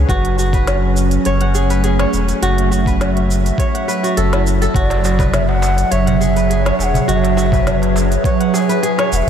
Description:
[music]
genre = organic downtempo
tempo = 103 BPM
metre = 4/4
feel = straight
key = F# minor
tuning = A4 = 439 Hz
[part]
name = warbly tape-like pad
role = sustained chords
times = 0.0-9.3 s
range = F#3 to E5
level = -18 LUFS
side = right 2 dB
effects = chorus, built-in reverb, phaser, sidechain pumping
[part]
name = kora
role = arpeggios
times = 0.0-9.3 s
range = E4 to F#5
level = -21 LUFS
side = equal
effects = tape echo
[part]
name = warm sub bass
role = bass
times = 0.0-9.3 s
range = E1 to F#1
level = -17 LUFS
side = equal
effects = none
[part]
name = electronic kick drum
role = drums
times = 0.1-8.4 s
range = none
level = -18 LUFS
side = equal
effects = overdrive
[part]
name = organic electronic drum kit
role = drums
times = 0.1-9.2 s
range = cabasa, hi-hat, snare drum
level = -25 LUFS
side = right 1 dB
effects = overdrive
[part]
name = breathy bright low ney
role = melody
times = 4.8-9.3 s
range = D5 to G#5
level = -21 LUFS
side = equal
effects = tape echo
[part]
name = darbuka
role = percussion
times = 4.9-9.3 s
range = none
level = -25 LUFS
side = equal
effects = none
[sound]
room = moderate huge ambient reverb, RT60 7.8 s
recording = dreamy mix soaked in reverb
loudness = -13 LUFS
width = side -8 dB against mid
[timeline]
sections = 0.0-9.3 A section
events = none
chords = 0.1 F#m7; 4.8 E13

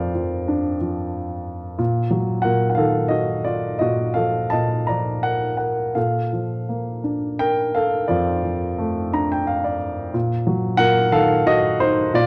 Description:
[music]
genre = classical, lyrical solo piano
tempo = 82-93 BPM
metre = 3/4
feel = rubato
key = unclear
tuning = A4 = 441 Hz
[part]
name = warm grand piano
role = solo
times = 0.0-12.3 s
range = F2 to Bb5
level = -21 LUFS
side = equal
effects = none
[sound]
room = light reverb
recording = dark, warm production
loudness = -21 LUFS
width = mono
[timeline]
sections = 0.0-12.3 A section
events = grand piano fill 8.8-10.1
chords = 0.0 Bbmaj7; 1.8 Ebmadd9/Bb; 6.0 Bbmaj7; 10.1 Ebm/Bb

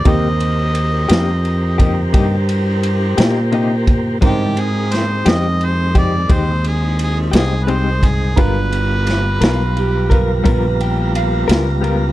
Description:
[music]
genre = slow blues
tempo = 58 BPM (dotted quarters)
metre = 12/8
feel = straight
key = C minor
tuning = A4 = 439 Hz
[part]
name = clear harmonica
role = melody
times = 0.0-10.5 s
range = G4 to Eb5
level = -23 LUFS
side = equal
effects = overdrive
[part]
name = bright upright piano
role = accompaniment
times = 0.0-12.1 s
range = B3 to A#5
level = -27 LUFS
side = right 8 dB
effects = none
[part]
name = tonewheel organ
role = sustained chords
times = 0.0-12.1 s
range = Db3 to A#5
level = -24 LUFS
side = right 1 dB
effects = slow rotary speaker
[part]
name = mellow fretless electric bass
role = bass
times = 0.0-12.1 s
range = G1 to Bb2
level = -17 LUFS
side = equal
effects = none
[part]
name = direct-recorded clean electric guitar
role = accompaniment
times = 0.1-12.0 s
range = C3 to A#4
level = -20 LUFS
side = left 5 dB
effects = tremolo
[part]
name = raw garage drum kit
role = drums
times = 0.1-12.0 s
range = kick drum, ride cymbal, snare drum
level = -18 LUFS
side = equal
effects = none
[part]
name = electric slide guitar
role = second line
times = 9.4-11.5 s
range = F4 to G5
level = -22 LUFS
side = right 5 dB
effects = none
[sound]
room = little or no reverb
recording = none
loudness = -13 LUFS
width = side -15 dB against mid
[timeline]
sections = 0.0-12.1 A section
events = none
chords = 0.0 Cm7; 4.2 Abmaj7; 8.4 G7#9

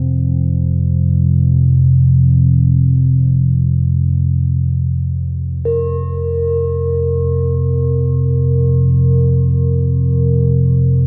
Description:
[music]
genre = ambient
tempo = free time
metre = none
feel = none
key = unclear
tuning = A4 = 439 Hz
[part]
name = deep rumbling drone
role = drone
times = 0.0-11.1 s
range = F2 to C3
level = -14 LUFS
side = equal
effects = built-in reverb, phaser
[part]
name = quartz singing bowl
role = texture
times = 5.7-11.1 s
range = Bb4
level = -23 LUFS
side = equal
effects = none
[sound]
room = wet huge ambient reverb, RT60 7.3 s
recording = dark, warm production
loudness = -14 LUFS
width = mono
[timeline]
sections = 0.0-5.6 A section; 5.6-11.1 B section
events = none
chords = 0.0 F5

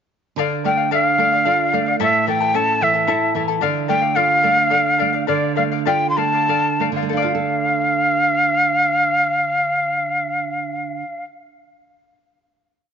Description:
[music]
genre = andean folk, Andean ensemble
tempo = 60-74 BPM (dotted quarters)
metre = 6/8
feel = straight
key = D harmonic minor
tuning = A4 = 440 Hz
[part]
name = charango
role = accompaniment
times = 0.4-11.4 s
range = E4 to A5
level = -23 LUFS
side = left 14 dB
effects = none
[part]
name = nylon-string guitar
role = accompaniment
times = 0.4-11.5 s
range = A2 to A4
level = -24 LUFS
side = right 13 dB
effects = none
[part]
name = breathy mellow quena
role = melody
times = 0.7-11.2 s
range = D5 to C6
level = -17 LUFS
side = left 1 dB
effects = none
[sound]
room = light reverb, small room ambience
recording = 1960s-style stereo with parts hard left and right, nothing above 7.5 kHz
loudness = -16 LUFS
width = side -7 dB against mid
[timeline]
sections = 0.4-7.1 A section; 7.1-11.1 final chord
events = slowing down 3.6-7.1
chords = 0.4 Dm; 2.0 A; 3.6 Dm

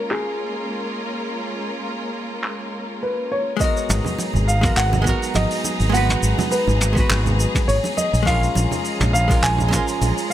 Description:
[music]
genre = sunset chillout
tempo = 103 BPM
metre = 4/4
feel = swing 54% on 16ths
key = G# dorian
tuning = A4 = 440 Hz
[part]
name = dark baby grand piano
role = melody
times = 0.0-10.3 s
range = G#4 to G#5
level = -24 LUFS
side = equal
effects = tape echo
[part]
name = hollow-body jazz guitar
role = accompaniment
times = 0.0-10.3 s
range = G#3 to B4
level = -26 LUFS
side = moving between left 7 dB and right 8 dB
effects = auto-pan, tape echo
[part]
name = clear studio string section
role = sustained chords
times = 0.0-10.3 s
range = E#3 to A#5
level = -27 LUFS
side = equal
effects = none
[part]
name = vintage brush drum kit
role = drums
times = 0.1-10.3 s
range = handclaps, hi-hat, shaker, toms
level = -26 LUFS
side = equal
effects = low-pass filter on hats, low-pass filter on toms, low-pass filter on snare, low-pass filter on perc, low-pass filter on room
[part]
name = electronic kick drum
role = drums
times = 3.6-9.8 s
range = none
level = -22 LUFS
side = equal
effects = overdrive
[part]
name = fretless electric bass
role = bass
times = 3.9-10.1 s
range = G#1 to A#1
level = -19 LUFS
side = equal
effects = none
[part]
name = congas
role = percussion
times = 3.9-10.1 s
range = none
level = -28 LUFS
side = right 3 dB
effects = none
[sound]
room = light reverb, studio ambience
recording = none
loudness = -18 LUFS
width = side -12 dB against mid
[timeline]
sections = 0.0-3.6 A section; 3.6-10.3 B section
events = none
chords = 0.0 A#m7; 3.6 G#m9; 8.3 A#m7

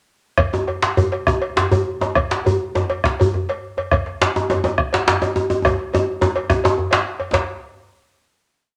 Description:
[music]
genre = west african traditional, West African drum ensemble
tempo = 138 BPM (dotted quarters)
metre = 12/8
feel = uneven beats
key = none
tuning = none
[part]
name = bombo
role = percussion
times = 0.4-7.5 s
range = none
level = -22 LUFS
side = equal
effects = none
[part]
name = cowbell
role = percussion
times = 0.4-7.5 s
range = none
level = -27 LUFS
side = equal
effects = none
[part]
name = djembe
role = percussion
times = 0.4-7.5 s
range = none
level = -30 LUFS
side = equal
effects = none
[part]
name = djembe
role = percussion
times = 0.5-7.5 s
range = none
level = -20 LUFS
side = equal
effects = none
[sound]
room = moderate studio reverb, RT60 1.0 s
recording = none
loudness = -19 LUFS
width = mono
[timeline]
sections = 0.4-7.3 A section; 7.3-8.8 final hit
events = speeding up 0.4-8.8; drum fill 5.7-7.3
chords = none

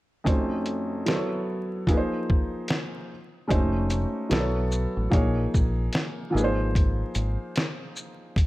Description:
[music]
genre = lo-fi hip hop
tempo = 74 BPM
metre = 4/4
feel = swing 61% on 16ths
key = Bb minor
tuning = A4 = 443 Hz
[part]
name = felt-muted upright piano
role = accompaniment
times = 0.2-8.5 s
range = F2 to Db5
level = -27 LUFS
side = equal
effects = low-pass filter
[part]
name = dusty soul sampler-style drum kit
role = drums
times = 0.3-8.5 s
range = hi-hat, kick drum, shaker, snare drum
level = -25 LUFS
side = equal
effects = vintage 12-bit sampler grit
[part]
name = deep dub fingered electric bass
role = bass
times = 3.5-7.4 s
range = F1 to B1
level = -26 LUFS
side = equal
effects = none
[sound]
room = light reverb, digital ambience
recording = vinyl crackle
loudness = -23 LUFS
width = side -18 dB against mid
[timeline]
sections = 0.3-3.5 A section; 3.5-8.5 B section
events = none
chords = 0.3 F7b9b13; 1.1 B5; 1.9 Bb5; 3.1 N.C.; 3.5 F7b9b13; 4.3 B5; 5.1 Bbm7; 6.3 Ab69

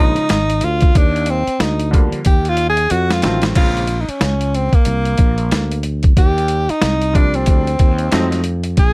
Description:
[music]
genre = hip hop, jazz-hop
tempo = 92 BPM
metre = 4/4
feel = swing 60% on 16ths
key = Eb major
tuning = A4 = 440 Hz
[part]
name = mellow tenor saxophone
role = melody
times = 0.0-8.9 s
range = Bb3 to Ab4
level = -18 LUFS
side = equal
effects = none
[part]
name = bright upright piano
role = accompaniment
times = 0.0-8.4 s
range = Db3 to Eb4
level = -22 LUFS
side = equal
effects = none
[part]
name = sustaining fretless electric bass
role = bass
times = 0.0-8.9 s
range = Ab1 to F2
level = -18 LUFS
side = equal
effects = none
[part]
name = boom bap sampler-style drum kit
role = drums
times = 0.2-8.9 s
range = crash cymbal, hi-hat, kick drum, snare drum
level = -14 LUFS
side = equal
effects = none
[sound]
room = little or no reverb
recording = vinyl crackle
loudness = -13 LUFS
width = side -27 dB against mid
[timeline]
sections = 0.0-3.6 A section; 3.6-8.9 B section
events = tenor saxophone solo 0.0-3.6; drum fill 2.3-3.6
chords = 0.0 Bbm7; 1.0 Ebmaj7; 2.9 F7b9; 3.6 Bbm; 6.2 Ebmaj7; 8.1 F7b9

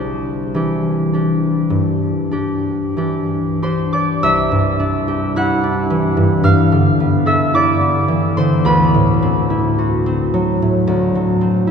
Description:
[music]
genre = classical, solo harp piece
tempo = 45-57 BPM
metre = 4/4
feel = rubato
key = C lydian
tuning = A4 = 435 Hz
[part]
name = concert harp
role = solo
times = 0.0-11.7 s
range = C2 to F#6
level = -14 LUFS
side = equal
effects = none
[sound]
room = wet cathedral reverb, RT60 6.4 s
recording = recorded in a church or concert hall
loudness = -14 LUFS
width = side -6 dB against mid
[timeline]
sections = 0.0-4.2 A section; 4.2-11.7 A section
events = none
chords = 0.0 Cadd9; 6.5 G13; 8.7 D13

